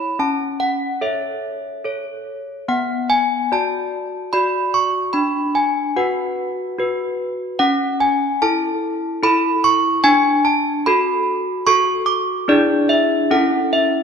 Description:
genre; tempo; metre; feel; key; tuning
classical, tune for handbells; 73 BPM; 3/4; straight; unclear; A4 = 440 Hz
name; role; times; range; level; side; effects
desk bells; solo; 0.0-14.0 s; B3 to D6; -16 LUFS; equal; none
room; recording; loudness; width
moderate concert hall reverb, RT60 2.0 s; dark, warm production; -16 LUFS; side -6 dB against mid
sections
0.0-14.0 A section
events
none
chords
0.2 A/C#; 2.7 Bm; 5.1 Bm/D; 7.6 A/C#; 10.0 Bm7/D; 12.5 E7/D; 13.3 A/C#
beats
| 0.17 1.01 1.83 | 2.67 3.50 4.33 | 5.14 5.96 6.78 | 7.60 8.42 9.23 | 10.05 10.86 11.67 | 12.48 13.31

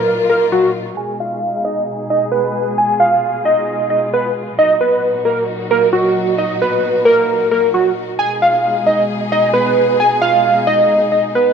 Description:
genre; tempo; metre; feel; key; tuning
hip hop; 133 BPM; 4/4; half-time; unclear; A4 = 440 Hz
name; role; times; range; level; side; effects
warbly lo-fi synth keys; melody; 0.0-11.5 s; Gb4 to Ab5; -13 LUFS; right 1 dB; chorus, low-pass filter, digital delay
warm symphonic string section; sustained chords; 0.0-11.5 s; Bb2 to Ab4; -23 LUFS; left 2 dB; low-pass filter
room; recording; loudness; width
light reverb, studio reverb; rough home demo mix; -13 LUFS; side -6 dB against mid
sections
1.0-8.2 A section; 8.2-11.5 B section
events
filter sweep 1.0-8.2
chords
0.0 Ebm; 1.0 Abm; 4.6 Ebm; 8.2 Abm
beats
0.07 0.52 | 0.97 1.42 1.87 2.32 | 2.77 3.23 3.68 4.13 | 4.58 5.03 5.48 5.93 | 6.38 6.83 7.29 7.74 | 8.19 8.64 9.09 9.54 | 9.99 10.44 10.89 11.35

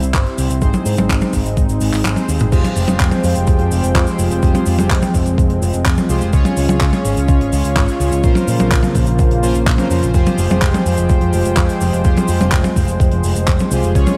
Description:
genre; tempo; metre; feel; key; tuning
italo disco; 126 BPM; 4/4; straight; F minor; A4 = 440 Hz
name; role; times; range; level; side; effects
warm analog pad; sustained chords; 0.0-14.2 s; Db3 to G5; -22 LUFS; equal; chorus
analog synth brass; stabs; 0.0-14.2 s; C4 to Db5; -26 LUFS; equal; chorus, digital delay
picked electric bass with an envelope filter; bass; 0.0-14.0 s; F1 to Bb2; -20 LUFS; equal; tube saturation
tight funk drum kit; drums; 0.0-14.2 s; cabasa, crash cymbal, handclaps, hi-hat, toms; -22 LUFS; equal; none
electronic kick drum; drums; 0.1-14.0 s; none; -18 LUFS; equal; none
room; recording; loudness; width
light reverb; vinyl crackle; -15 LUFS; mono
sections
0.0-2.5 A section; 2.5-14.2 B section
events
filter sweep on analog polysynth 0.0-2.5; kick drops out 2.0-2.5; drum fill 2.0-2.5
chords
0.0 C; 0.6 Ab; 2.5 Fmadd9; 6.3 Db; 8.2 Bbmadd9; 10.1 Fmadd9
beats
0.14 | 0.62 1.10 1.57 2.05 | 2.52 3.00 3.48 3.95 | 4.43 4.91 5.38 5.86 | 6.33 6.81 7.29 7.76 | 8.24 8.71 9.19 9.67 | 10.14 10.62 11.10 11.57 | 12.05 12.53 13.00 13.48 | 13.95

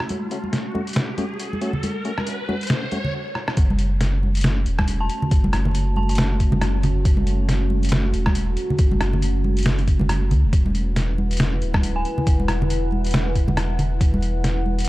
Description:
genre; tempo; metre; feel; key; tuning
deep dubstep; 138 BPM; 4/4; swing 58% on 16ths, half-time; F# minor; A4 = 440 Hz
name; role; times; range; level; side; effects
deep dark ambient pad; sustained chords; 0.0-14.9 s; A3 to F#5; -30 LUFS; equal; chorus, built-in reverb
soft dub sub bass; bass; 0.0-14.9 s; D1 to C#2; -21 LUFS; equal; high-pass filter
trip hop sampler-style drum kit; drums; 0.0-14.9 s; hi-hat, rim click, snare drum; -25 LUFS; equal; none
riser; sound effects; 0.0-3.1 s; none; -32 LUFS; equal; none
congas; percussion; 0.1-14.8 s; none; -27 LUFS; right 1 dB; none
percussive organ stab; stabs; 0.3-3.0 s; A3 to F#4; -32 LUFS; left 2 dB; chorus, dub echo
electronic kick drum; drums; 3.6-14.1 s; none; -19 LUFS; equal; none
dark detuned synth bell; melody; 5.0-6.2, 12.0-12.3 s; G#5 to A5; -34 LUFS; right 1 dB; chorus, vintage 12-bit sampler grit, dub echo
room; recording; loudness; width
digital ambience; dark, warm production, vinyl crackle; -18 LUFS; side -18 dB against mid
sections
0.0-3.6 A section; 3.6-14.9 B section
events
build-up 0.0-3.6; riser 0.0-3.1; stop 3.1-3.6; drum fill 3.4; drop 3.6-14.9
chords
0.0 F#m; 10.5 E5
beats
| 0.10 0.53 0.96 1.40 | 1.83 2.27 2.70 3.14 | 3.57 4.01 4.44 4.88 | 5.31 5.75 6.18 6.62 | 7.05 7.49 7.92 8.36 | 8.79 9.22 9.66 10.10 | 10.53 10.96 11.40 11.83 | 12.27 12.70 13.14 13.57 | 14.01 14.44 14.88

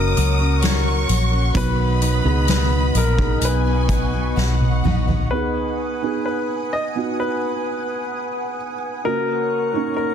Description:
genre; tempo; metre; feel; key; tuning
pop ballad; 64 BPM; 4/4; straight; B major; A4 = 439 Hz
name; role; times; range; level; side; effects
clear concert grand piano; melody; 0.0-10.1 s; A#4 to D#5; -25 LUFS; left 4 dB; digital delay
warm studio violin section; second line; 0.0-5.3 s; F#5 to D#6; -28 LUFS; equal; digital delay
felt-muted upright piano; accompaniment; 0.0-10.1 s; B2 to G#4; -27 LUFS; right 7 dB; none
glassy FM pad; sustained chords; 0.0-10.1 s; B3 to D#6; -28 LUFS; equal; ensemble chorus, built-in reverb
picked steel-string acoustic guitar; arpeggios; 0.0-5.3 s; B2 to B4; -28 LUFS; left 8 dB; none
vintage muted fingered electric bass; bass; 0.0-5.3 s; F#1 to C#2; -19 LUFS; equal; none
soft-mallet drum kit; drums; 0.2-5.3 s; hi-hat, kick drum, snare drum, toms; -23 LUFS; equal; none
room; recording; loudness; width
light reverb, small room reverb; dense, heavily limited modern master; -18 LUFS; side -8 dB against mid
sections
0.0-5.3 A section; 5.3-10.1 A section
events
drum fill 4.4-5.3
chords
0.0 F#; 1.6 B; 5.3 B6; 9.0 F#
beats
0.63 | 1.55 2.48 3.42 4.37 | 5.31 6.25 7.19 8.11 | 9.04 9.97

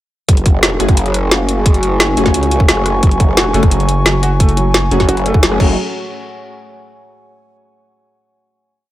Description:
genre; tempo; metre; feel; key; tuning
dark technical drum and bass; 175 BPM; 4/4; straight; F# minor; A4 = 442 Hz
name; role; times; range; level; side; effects
dark analog pad; sustained chords; 0.3-5.8 s; A3 to C#6; -21 LUFS; equal; chorus, sidechain pumping
growl bass; bass; 0.3-5.8 s; F#1 to C#2; -16 LUFS; equal; chorus
drum and bass drum kit; drums; 0.3-5.7 s; crash cymbal, hi-hat, rim click, snare drum; -16 LUFS; equal; none
electronic kick drum; drums; 0.3-5.7 s; none; -11 LUFS; equal; none
orchestra-hit-like synth stab; stabs; 0.8-5.7 s; A3 to G#4; -21 LUFS; left 2 dB; built-in reverb, dub echo
felt-muted upright piano; arpeggios; 3.2-5.8 s; F#3 to F#4; -21 LUFS; right 1 dB; sidechain pumping, dub echo
growling FM bass; bass; 3.5-5.1 s; F#1; -15 LUFS; equal; tube saturation
room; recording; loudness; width
digital ambience; none; -10 LUFS; side -14 dB against mid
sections
0.3-5.8 drop; 5.8-7.1 final hit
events
drop 0.3-5.8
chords
0.3 F#madd9; 5.8 N.C.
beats
| 0.29 0.63 0.97 1.31 | 1.66 2.00 2.34 2.69 | 3.03 3.37 3.71 4.06 | 4.40 4.74 5.09 5.43

